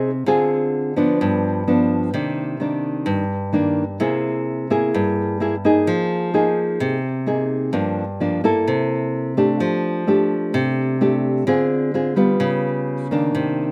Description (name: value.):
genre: bossa nova.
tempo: 128 BPM.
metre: 4/4.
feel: straight.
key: C minor.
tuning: A4 = 440 Hz.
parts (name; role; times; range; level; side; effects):
nylon-string guitar; solo; 0.0-13.7 s; G2 to A4; -20 LUFS; equal; none.
room: light reverb.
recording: recorded outdoors, with no room sound.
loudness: -20 LUFS.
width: mono.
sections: 0.0-2.1 A section; 2.1-13.7 B section.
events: none.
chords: 0.3 Dm7b5; 1.2 G7; 2.1 Cm9; 4.0 C7b13; 5.9 Fm7; 7.7 Gm7; 8.7 C13; 9.6 F69; 11.5 Dm7b5; 12.4 Db7#11.